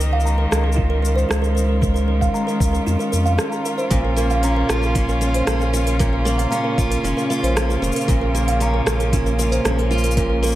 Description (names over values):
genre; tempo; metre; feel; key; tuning
folktronica; 115 BPM; 4/4; straight; Bb dorian; A4 = 438 Hz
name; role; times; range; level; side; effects
music box; second line; 0.0-10.6 s; F4 to Bb5; -25 LUFS; right 2 dB; tape echo
warm string quartet; sustained chords; 0.0-10.6 s; Db3 to Eb5; -23 LUFS; equal; none
warm sub bass; bass; 0.0-10.6 s; F1 to F2; -20 LUFS; equal; none
organic electronic drum kit; drums; 0.0-10.5 s; hi-hat, rim click, shaker; -26 LUFS; equal; overdrive
electronic kick drum; drums; 0.8-10.3 s; none; -22 LUFS; equal; none
picked steel-string acoustic guitar; arpeggios; 3.9-10.6 s; Bb2 to F4; -24 LUFS; right 1 dB; tape echo
room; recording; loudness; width
light reverb; none; -17 LUFS; side -14 dB against mid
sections
0.0-10.6 A section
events
break 3.4-3.9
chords
0.0 Dbadd9; 3.9 Bbm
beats
0.26 0.78 1.30 | 1.82 2.35 2.87 3.39 | 3.91 4.43 4.95 5.47 | 6.00 6.52 7.04 7.56 | 8.08 8.61 9.13 9.65 | 10.17